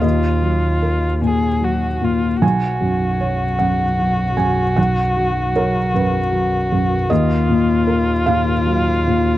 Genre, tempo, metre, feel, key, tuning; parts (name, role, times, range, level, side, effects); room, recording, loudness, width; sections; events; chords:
neoclassical piano and strings; 51 BPM (dotted quarters); 6/8; rubato; Eb minor; A4 = 439 Hz
muted violin; melody; 0.0-9.4 s; F4 to Ab4; -21 LUFS; left 1 dB; tape echo
felt-muted upright piano; accompaniment; 0.0-9.4 s; B1 to Ab5; -18 LUFS; equal
muted double bass; bass; 0.0-9.4 s; B1 to Eb2; -21 LUFS; right 1 dB
light reverb; dry, close 1970s-style studio recording; -15 LUFS; side -14 dB against mid
0.0-9.4 A section
0.0 Ebmadd9; 2.4 Bsus2; 7.1 Ebmadd9